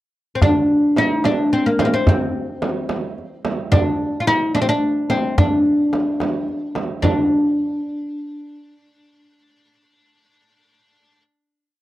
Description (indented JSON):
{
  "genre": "Persian modal ensemble",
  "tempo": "72 BPM (dotted quarters)",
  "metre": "6/8",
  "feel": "straight",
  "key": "unclear",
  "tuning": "A4 = 441 Hz",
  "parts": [
    { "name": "oud", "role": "melody", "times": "0.4-11.2 s", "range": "Bb3 to F4", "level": "-18 LUFS", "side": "left 1 dB", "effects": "none" },
    { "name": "frame drum", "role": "percussion", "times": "0.4-7.3 s", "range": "none", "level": "-24 LUFS", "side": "right 4 dB", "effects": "none" },
    { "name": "tombak", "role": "percussion", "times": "0.4-7.3 s", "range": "none", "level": "-19 LUFS", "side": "left 1 dB", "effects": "none" }
  ],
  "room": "little or no reverb",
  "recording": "dry, close 1970s-style studio recording",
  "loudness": "-16 LUFS",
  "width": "side -15 dB against mid",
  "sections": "0.0-0.4 pickup bar; 0.4-7.0 A section; 7.0-10.3 final note",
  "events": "none",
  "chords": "none"
}